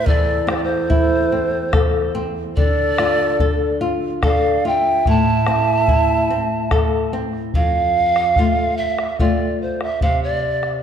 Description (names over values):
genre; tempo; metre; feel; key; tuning
andean folk, Andean ensemble; 72 BPM; 3/4; straight; unclear; A4 = 440 Hz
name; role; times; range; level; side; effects
breathy mellow polished pan flute; melody; 0.0-10.8 s; C5 to A5; -20 LUFS; equal; none
breathy large quena; second line; 0.0-7.1 s; G4 to E5; -24 LUFS; right 7 dB; none
flamenco guitar; accompaniment; 0.0-10.8 s; E2 to A4; -21 LUFS; left 1 dB; none
bombo; percussion; 0.1-10.8 s; none; -21 LUFS; equal; none
room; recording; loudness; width
wet concert hall reverb, RT60 1.7 s; dark, warm production; -16 LUFS; side -8 dB against mid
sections
0.0-7.5 A section; 7.5-10.8 B section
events
none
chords
0.0 Am; 2.6 Dm; 5.1 Am; 7.5 F